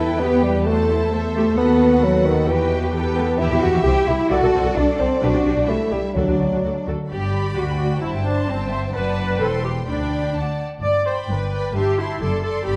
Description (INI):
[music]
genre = quick classical-period movement for symphony orchestra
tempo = 131 BPM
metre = 2/4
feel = straight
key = E minor, G major from 3.4 s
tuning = A4 = 441 Hz
[part]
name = clear studio violin section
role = melody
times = 0.0-12.8 s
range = D5 to C6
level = -35 LUFS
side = equal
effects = none
[part]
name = rich studio violin section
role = second line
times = 0.0-12.8 s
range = D4 to D6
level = -31 LUFS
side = equal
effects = none
[part]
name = bright studio viola section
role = accompaniment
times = 0.0-12.8 s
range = C4 to D5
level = -27 LUFS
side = equal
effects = none
[part]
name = dark bassoon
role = accompaniment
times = 0.0-6.9 s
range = D#3 to G4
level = -23 LUFS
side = equal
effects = none
[part]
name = rich studio cello section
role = bass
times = 0.0-12.8 s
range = D2 to G4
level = -27 LUFS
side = equal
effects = none
[part]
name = rich studio double bass section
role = bass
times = 0.0-12.8 s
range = E1 to E2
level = -26 LUFS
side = equal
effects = none
[part]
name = timpani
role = percussion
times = 6.2-6.8 s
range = D3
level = -36 LUFS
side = equal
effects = none
[sound]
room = wet scoring stage reverb, RT60 1.7 s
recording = dark, warm production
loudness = -20 LUFS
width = mono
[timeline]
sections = 0.0-7.1 A section; 7.1-12.8 B section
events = none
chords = 0.0 Em; 0.7 F#m7b5/E; 1.6 B/D#; 2.5 Em; 3.9 C (rootless); 4.3 D7/C; 5.2 G/B; 5.7 A7(no3); 6.2 D; 7.1 G; 8.0 Am7/G; 8.9 D/F#; 9.4 C/E; 9.9 G/D; 10.8 G; 11.8 Am7/G; 12.2 D7/F#